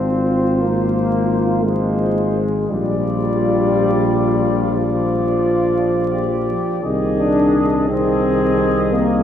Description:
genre	classical, hymn-like piece for brass band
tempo	58 BPM (dotted quarters)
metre	12/8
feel	rubato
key	unclear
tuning	A4 = 439 Hz
part	warm cornet	melody	0.0-9.2 s	C5 to Eb5	-26 LUFS	left 5 dB	none
part	warm flugelhorn	second line	0.0-9.2 s	F4 to Ab4	-24 LUFS	right 3 dB	none
part	clear trombone section	accompaniment	0.0-9.2 s	F3 to D4	-19 LUFS	left 2 dB	none
part	mellow euphonium	accompaniment	0.0-9.2 s	Eb3 to F3	-24 LUFS	right 2 dB	none
part	dark tuba	bass	0.0-9.2 s	Ab1 to C2	-20 LUFS	equal	none
room	wet cathedral reverb, RT60 5.9 s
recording	heard from further back in the room, vinyl crackle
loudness	-15 LUFS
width	side -9 dB against mid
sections	0.0-9.2 A section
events	none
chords	0.0 Fm/Ab; 2.7 Bb; 6.8 Ab/C

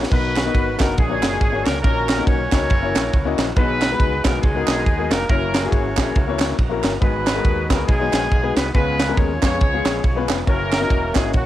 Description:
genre	uptempo gospel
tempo	139 BPM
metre	4/4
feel	swing 59% on 8ths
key	B major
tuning	A4 = 440 Hz
part	warm baby grand piano	accompaniment	0.0-11.3 s	G#2 to F#5	-24 LUFS	left 8 dB	cassette tape
part	percussive tonewheel organ	sustained chords	0.0-11.5 s	C#3 to A#5	-33 LUFS	right 10 dB	none
part	modern bright fingered electric bass	bass	0.0-11.5 s	E1 to E#2	-26 LUFS	right 1 dB	none
part	crisp fusion drum kit	drums	0.0-11.5 s	crash cymbal, kick drum, ride cymbal, snare drum	-20 LUFS	right 1 dB	cassette tape
part	clear horn section	melody	0.1-11.5 s	F#3 to C#5	-23 LUFS	equal	cassette tape
part	group handclap	percussion	0.4-11.2 s	none	-29 LUFS	right 12 dB	none
room	light reverb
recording	home recording on cassette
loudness	-16 LUFS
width	side -13 dB against mid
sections	0.1-11.5 A section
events	tonewheel organ fill 6.4-7.0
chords	0.1 Bmaj7; 1.0 A#7alt; 1.8 D#m7/A#; 2.7 F#7; 3.6 B6; 5.3 F#7; 7.0 G#m7; 8.7 C#7; 10.5 F#7

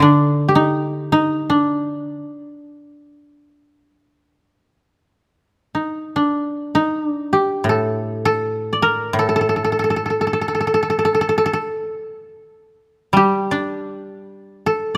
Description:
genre	japanese traditional, Japanese chamber music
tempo	70-85 BPM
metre	4/4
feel	rubato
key	D miyako bushi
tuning	A4 = 438 Hz
part	koto	melody	0.0-15.0 s	D4 to D5	-20 LUFS	equal	none
part	koto	accompaniment	0.0-2.2, 7.6-15.0 s	A2 to D4	-24 LUFS	equal	none
room	light reverb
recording	close, detailed microphones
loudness	-19 LUFS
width	mono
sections	0.0-6.1 A section; 6.1-15.0 B section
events	none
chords	none

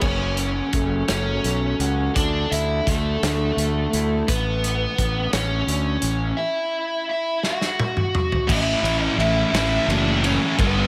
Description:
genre	quiet-loud alternative rock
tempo	57 BPM (dotted quarters)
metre	6/8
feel	straight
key	unclear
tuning	A4 = 440 Hz
part	lead guitar through a small cranked amp	melody	0.0-10.9 s	A3 to F#5	-26 LUFS	equal	overdrive, slapback echo
part	picked steel-string acoustic guitar	arpeggios	0.0-4.3 s	F#2 to F#4	-31 LUFS	equal	slapback echo
part	fuzz fingered electric bass	bass	0.0-10.8 s	F#1 to D2	-26 LUFS	equal	overdrive
part	loose indie drum kit	drums	0.0-10.8 s	crash cymbal, hi-hat, kick drum, ride cymbal, snare drum, toms	-27 LUFS	equal	none
part	thick fuzz guitar	riff	8.5-10.9 s	G2 to E4	-24 LUFS	equal	distortion
room	moderate lush hall reverb, RT60 2.7 s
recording	big arena sound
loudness	-22 LUFS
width	mono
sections	0.0-8.5 A section; 8.5-10.9 B section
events	drum fill 7.4-8.5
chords	0.0 F#m; 2.2 Dsus2; 4.3 A; 6.4 Esus2; 8.5 A

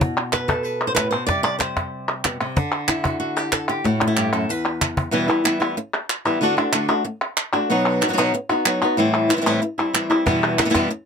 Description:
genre	flamenco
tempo	187 BPM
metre	4/4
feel	straight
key	E minor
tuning	A4 = 439 Hz
part	flamenco guitar	melody	0.0-10.9 s	E2 to D5	-20 LUFS	left 1 dB	none
part	cajon	percussion	0.0-5.0, 10.3-10.9 s	none	-23 LUFS	equal	none
part	palmas hand claps	percussion	0.2-10.9 s	none	-22 LUFS	right 1 dB	none
room	little or no reverb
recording	close, detailed microphones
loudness	-18 LUFS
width	side -6 dB against mid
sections	0.0-5.1 A section; 5.1-11.1 B section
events	drum fill 3.8-5.1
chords	0.0 Asus2; 1.3 C5; 2.6 N.C.; 3.8 A5; 4.5 N.C.; 5.1 Em; 6.4 D; 7.7 B; 9.0 Am7; 10.3 Em

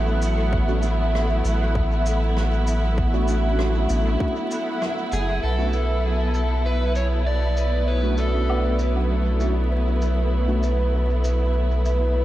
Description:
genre	ambient dub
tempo	98 BPM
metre	4/4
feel	straight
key	B minor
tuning	A4 = 441 Hz
part	rich symphonic string section	sustained chords	0.0-12.2 s	F#3 to E4	-26 LUFS	equal	none
part	soft dub sub bass	bass	0.0-12.2 s	F#1 to B1	-21 LUFS	equal	none
part	bubbling stepped-filter texture	texture	0.0-12.2 s	B4 to F#5	-32 LUFS	right 3 dB	chorus, built-in reverb
part	shaker, rim click and woodblock	drums	0.2-12.0 s	none	-37 LUFS	right 1 dB	low-pass filter on snare, low-pass filter on perc, low-pass filter on room, dub echo
part	electronic kick drum	drums	0.5-4.3 s	none	-26 LUFS	equal	none
part	mellow tine electric piano	stabs	0.7-10.6 s	A3 to F#4	-31 LUFS	right 1 dB	ensemble chorus, low-pass filter, dub echo
part	overdriven slide guitar	melody	5.1-8.8 s	G#4 to D5	-30 LUFS	equal	dub echo
room	light reverb, studio reverb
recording	vinyl crackle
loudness	-20 LUFS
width	side -14 dB against mid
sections	0.0-5.4 A section; 5.4-12.2 B section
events	filter sweep on tine electric piano 0.0-5.4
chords	0.0 Bm7

